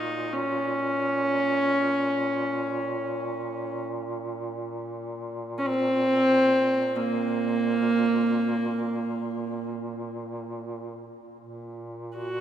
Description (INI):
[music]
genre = caucasian folk, Caucasian lament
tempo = free time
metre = none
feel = none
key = Bb minor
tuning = A4 = 439 Hz
[part]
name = dark viola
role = melody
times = 0.0-12.4 s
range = Bb3 to Gb4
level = -24 LUFS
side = right 1 dB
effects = none
[part]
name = warm duduk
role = drone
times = 0.0-12.4 s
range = Bb2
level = -34 LUFS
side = equal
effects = none
[sound]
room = wet cathedral reverb, RT60 6.4 s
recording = minimal, uncompressed stereo recording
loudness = -24 LUFS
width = side -10 dB against mid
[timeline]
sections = 0.0-11.4 A section; 11.4-12.4 A section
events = none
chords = none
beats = free time